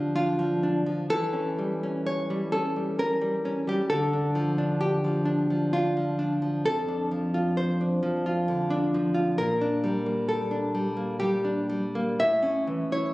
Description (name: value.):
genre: romantic piece for solo classical guitar.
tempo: 65 BPM.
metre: 3/4.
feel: uneven beats, rubato.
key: D minor.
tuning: A4 = 439 Hz.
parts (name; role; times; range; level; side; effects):
nylon-string guitar; solo; 0.0-13.1 s; F2 to E5; -24 LUFS; equal; slapback echo.
room: light reverb.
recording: recorded on a phone in the room, club reverb, compression.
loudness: -24 LUFS.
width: side -18 dB against mid.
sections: 0.0-13.1 A section.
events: none.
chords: 0.0 Dm; 1.1 A7/E; 3.9 Dm; 6.7 Dm/F; 9.4 Gm/Bb; 12.2 A.